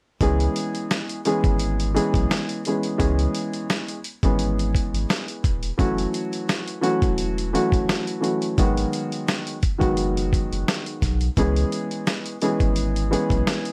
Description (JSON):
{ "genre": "hip hop, boom-bap hip-hop", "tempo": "86 BPM", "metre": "4/4", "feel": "swing 54% on 16ths", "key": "C# minor", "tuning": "A4 = 435 Hz", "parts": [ { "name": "dark baby grand piano", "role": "accompaniment", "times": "0.2-13.7 s", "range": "D#3 to G#4", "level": "-26 LUFS", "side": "equal", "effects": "high-pass filter, low-pass filter" }, { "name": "warm sub bass", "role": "bass", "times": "0.2-13.4 s", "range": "E1 to C#2", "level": "-27 LUFS", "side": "equal", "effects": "none" }, { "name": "dusty soul sampler-style drum kit", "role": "drums", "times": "0.2-13.7 s", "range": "hi-hat, kick drum, snare drum", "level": "-26 LUFS", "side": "equal", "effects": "none" } ], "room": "light reverb", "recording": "vinyl crackle, lossy compression artefacts", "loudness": "-23 LUFS", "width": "mono", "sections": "0.2-13.7 A section", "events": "none", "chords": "0.2 C#m7; 5.8 F#m7; 8.6 G#m7; 11.4 C#m7" }